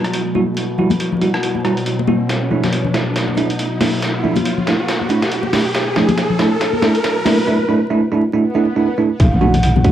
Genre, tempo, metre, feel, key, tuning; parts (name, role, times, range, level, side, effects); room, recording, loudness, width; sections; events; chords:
deep dubstep; 139 BPM; 4/4; swing 58% on 16ths, half-time; B minor; A4 = 436 Hz
overtone-sweeping drone; sustained chords; 0.0-7.5 s; B2 to F#3; -24 LUFS; equal; chorus, built-in reverb, phaser, cassette tape
trip hop sampler-style drum kit; drums; 0.0-9.9 s; hi-hat, rim click, snare drum; -23 LUFS; equal; high-pass filter on hats, cassette tape, high-pass filter on snare, high-pass filter on room
riser, swell and impact; sound effects; 0.1-9.9 s; -22 LUFS; equal
congas; percussion; 0.3-9.8 s; -21 LUFS; left 4 dB; dub echo
bell-like tine electric piano; stabs; 0.4-9.9 s; G3 to F#4; -18 LUFS; right 3 dB; vintage 12-bit sampler grit, low-pass filter, cassette tape, dub echo
breathy mellow ney; melody; 9.2-9.9 s; F#5; -22 LUFS; right 2 dB; dub echo
deep soft wobble bass; bass; 9.2-9.9 s; B1; -15 LUFS; equal; chorus
electronic kick drum; drums; 9.2-9.9 s; -13 LUFS; equal; cassette tape
wet booth ambience, RT60 0.3 s; home recording on cassette, vinyl crackle; -14 LUFS; side -11 dB against mid
0.0-9.2 A section
build-up 0.0-9.2; filter sweep on tine electric piano 0.0-9.2; riser 0.1-7.5; drum fill 2.3-7.5; swell 8.5-9.2; impact 9.2-9.9
0.0 Emadd9; 2.3 Bmadd11; 9.2 Bm7